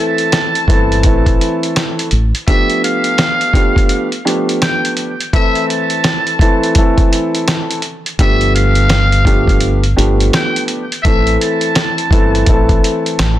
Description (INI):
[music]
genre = hip hop, boom-bap hip-hop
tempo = 84 BPM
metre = 4/4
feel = swing 62% on 16ths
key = A minor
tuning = A4 = 440 Hz
[part]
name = trumpet with metal mute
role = melody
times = 0.0-12.7 s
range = E5 to A5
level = -18 LUFS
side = equal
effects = high-pass filter, low-pass filter, digital delay
[part]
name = dark grand piano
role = accompaniment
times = 0.0-13.4 s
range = E3 to A4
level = -16 LUFS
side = equal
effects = cassette tape, high-pass filter, low-pass filter
[part]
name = lo-fi sampler-style drum kit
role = drums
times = 0.2-13.4 s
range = hi-hat, kick drum, snare drum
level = -14 LUFS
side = equal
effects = none
[part]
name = deep dub fingered electric bass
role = bass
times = 0.7-2.3, 8.2-13.4 s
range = G1 to A1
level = -14 LUFS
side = equal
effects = none
[sound]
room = little or no reverb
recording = dense, heavily limited modern master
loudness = -11 LUFS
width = side -13 dB against mid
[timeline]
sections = 0.0-13.4 A section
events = none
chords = 0.0 Am; 2.5 G7; 5.3 Am; 8.2 G7; 11.0 Am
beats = 0.33 1.05 1.76 | 2.48 3.19 3.90 4.62 | 5.33 6.05 6.76 7.47 | 8.19 8.90 9.62 10.33 | 11.05 11.76 12.47 13.19